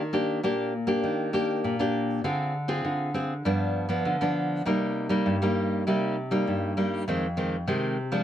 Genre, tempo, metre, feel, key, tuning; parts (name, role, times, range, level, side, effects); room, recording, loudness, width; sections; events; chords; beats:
samba; 99 BPM; 4/4; straight; A4 = 437 Hz
nylon-string guitar; solo; 0.0-8.2 s; F2 to Ab4; -24 LUFS; equal
moderate studio reverb, RT60 0.6 s; dark, warm production; -24 LUFS; side -11 dB against mid
0.0-8.2 A section
0.0 Ebmaj7; 2.2 Dm7b5; 3.5 G7; 4.7 Cm7; 7.1 Fm7
0.44 1.04 1.65 | 2.25 2.85 3.46 4.06 | 4.66 5.27 5.87 6.47 | 7.08 7.68